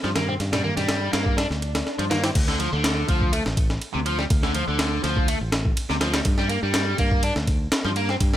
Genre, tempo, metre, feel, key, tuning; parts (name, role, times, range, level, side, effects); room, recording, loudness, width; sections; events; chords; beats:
breakbeat, breaks; 123 BPM; 4/4; straight; D minor; A4 = 440 Hz
biting overdriven guitar; riff; 0.0-8.4 s; C3 to D4; -26 LUFS; equal; digital delay
fingered electric bass; bass; 0.0-8.4 s; A1 to G2; -26 LUFS; equal
breakbeat sampler-style drum kit; drums; 0.0-8.4 s; crash cymbal, kick drum, ride cymbal, snare drum; -23 LUFS; equal; studio reverb
congas; percussion; 0.2-2.3 s; -34 LUFS; right 2 dB
swell; sound effects; 1.6-2.4 s; -36 LUFS; left 2 dB
digital ambience; -20 LUFS; side -12 dB against mid
0.0-2.4 A section; 2.4-8.4 B section
swell 1.6-2.4; drop 2.4-8.4
0.0 Gm; 2.4 Dm; 6.3 Gm
| 0.40 0.89 1.38 1.87 | 2.35 2.84 3.33 3.82 | 4.30 4.79 5.28 5.77 | 6.26 6.74 7.23 7.72 | 8.21